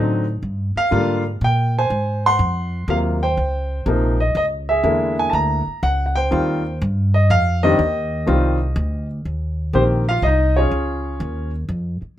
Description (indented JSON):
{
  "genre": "jazz piano trio",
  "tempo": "123 BPM",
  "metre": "3/4",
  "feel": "swing 67% on 8ths",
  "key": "Eb major",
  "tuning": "A4 = 439 Hz",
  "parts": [
    { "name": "warm baby grand piano", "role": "melody", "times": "0.0-11.5 s", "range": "C3 to C6", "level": "-19 LUFS", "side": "equal", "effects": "none" },
    { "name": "upright bass", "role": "bass", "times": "0.0-12.0 s", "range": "Bb1 to Bb2", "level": "-20 LUFS", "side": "equal", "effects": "none" }
  ],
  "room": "moderate club reverb, RT60 0.7 s",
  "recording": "minimal, uncompressed stereo recording",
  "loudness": "-17 LUFS",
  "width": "side -12 dB against mid",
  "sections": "0.0-9.2 A section; 9.2-12.2 B section",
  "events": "none",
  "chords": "0.4 Gm7; 1.9 Ab13; 3.4 Dbmaj13; 4.8 E7#11; 6.3 Eb69; 9.2 Eb5; 10.7 Dbadd9"
}